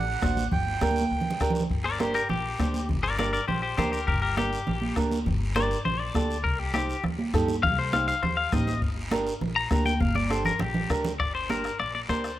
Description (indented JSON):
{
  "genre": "latin, cumbia",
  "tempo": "202 BPM",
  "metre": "4/4",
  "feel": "straight",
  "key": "G minor",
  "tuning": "A4 = 439 Hz",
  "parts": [
    { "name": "accordion", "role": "second line", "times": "0.0-1.5 s", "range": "F#5 to G5", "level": "-30 LUFS", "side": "right 5 dB", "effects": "none" },
    { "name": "upright bass", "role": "bass", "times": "0.0-12.4 s", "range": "G1 to G2", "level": "-31 LUFS", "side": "left 1 dB", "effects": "none" },
    { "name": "flamenco guitar", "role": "accompaniment", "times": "0.2-12.3 s", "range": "D4 to C5", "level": "-32 LUFS", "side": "right 3 dB", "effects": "none" },
    { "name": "bombo", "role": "percussion", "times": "0.2-12.4 s", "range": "none", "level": "-30 LUFS", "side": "left 2 dB", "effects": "none" },
    { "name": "congas", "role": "percussion", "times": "0.2-12.2 s", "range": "none", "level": "-31 LUFS", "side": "right 3 dB", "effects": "none" },
    { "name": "guiro", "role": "percussion", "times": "0.2-12.4 s", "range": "none", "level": "-41 LUFS", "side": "right 1 dB", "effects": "none" },
    { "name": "clean electric guitar", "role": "melody", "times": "1.8-12.4 s", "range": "G4 to Bb5", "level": "-28 LUFS", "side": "left 4 dB", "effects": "spring reverb" }
  ],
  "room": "light reverb, small room ambience",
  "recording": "rough home demo mix",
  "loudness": "-24 LUFS",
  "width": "side -13 dB against mid",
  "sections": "0.0-1.7 A section; 1.7-11.2 B section; 11.2-12.4 C section",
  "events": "accordion solo 0.0-1.7; drum fill 0.8-1.7, 10.0-11.2; clean electric guitar solo 1.7-11.2",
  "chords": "0.0 D7; 0.5 Gm; 6.5 Cm; 8.8 Gm"
}